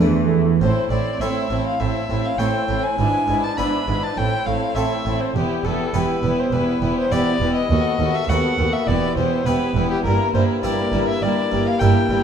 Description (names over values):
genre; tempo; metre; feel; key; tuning
classical, baroque-style concerto movement with solo episodes; 102 BPM; 4/4; straight; A minor; A4 = 441 Hz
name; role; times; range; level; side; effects
harpsichord; accompaniment; 0.0-12.2 s; D#2 to Bb4; -25 LUFS; equal; none
warm chamber viola section; accompaniment; 0.0-12.2 s; A3 to D4; -26 LUFS; equal; none
clear chamber double bass section; bass; 0.0-12.2 s; E1 to E2; -24 LUFS; right 4 dB; none
warm studio cello section; bass; 0.0-12.2 s; D#2 to E3; -25 LUFS; right 4 dB; none
warm symphonic violin section; melody; 0.6-12.2 s; G4 to C5; -32 LUFS; left 5 dB; none
warm violin; melody; 0.6-12.2 s; G4 to B5; -24 LUFS; left 2 dB; none
clear chamber violin section; second line; 0.6-12.2 s; E4 to F#4; -29 LUFS; left 2 dB; none
room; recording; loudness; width
wet recital hall reverb, RT60 1.5 s; dark, warm production; -17 LUFS; side -8 dB against mid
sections
0.6-12.2 A section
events
none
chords
0.0 D5; 0.6 Am; 3.0 E7/G#; 4.2 Am; 5.4 Em; 7.7 B7/D#; 8.9 Em; 10.0 Edim/G